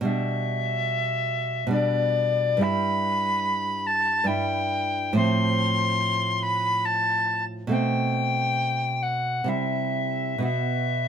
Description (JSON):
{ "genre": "romantic duo for recorder and classical guitar", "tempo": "60-74 BPM", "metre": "3/4", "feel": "rubato", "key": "E minor", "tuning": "A4 = 441 Hz", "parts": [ { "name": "nylon-string guitar", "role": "accompaniment", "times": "0.0-11.1 s", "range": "G2 to F#4", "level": "-26 LUFS", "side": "right 2 dB", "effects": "none" }, { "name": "alto recorder", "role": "melody", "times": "0.1-11.1 s", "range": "D5 to C6", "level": "-24 LUFS", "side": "left 2 dB", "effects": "none" } ], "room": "light reverb", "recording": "band playing live in one room", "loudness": "-22 LUFS", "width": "side -8 dB against mid", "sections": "0.0-11.1 A section", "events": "none", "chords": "0.1 G/B; 2.6 Em/G; 5.2 F/A; 7.7 Am13/B; 9.5 C; 10.4 B5" }